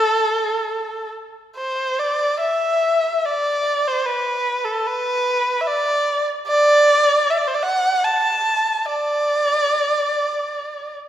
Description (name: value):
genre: celtic folk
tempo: 74 BPM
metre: 3/4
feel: uneven beats, rubato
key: A dorian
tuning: A4 = 440 Hz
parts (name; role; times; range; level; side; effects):
- rich erhu; solo; 0.0-10.9 s; A4 to A5; -17 LUFS; equal; none
room: wet scoring stage reverb, RT60 1.6 s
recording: recorded in a church or concert hall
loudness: -17 LUFS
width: side -11 dB against mid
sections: 0.0-1.6 A section; 1.6-11.1 A section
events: none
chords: none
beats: 0.71 | 1.57 2.41 3.25 | 4.06 4.86 5.66 | 6.45 7.24 8.03 | 8.84 9.68 10.52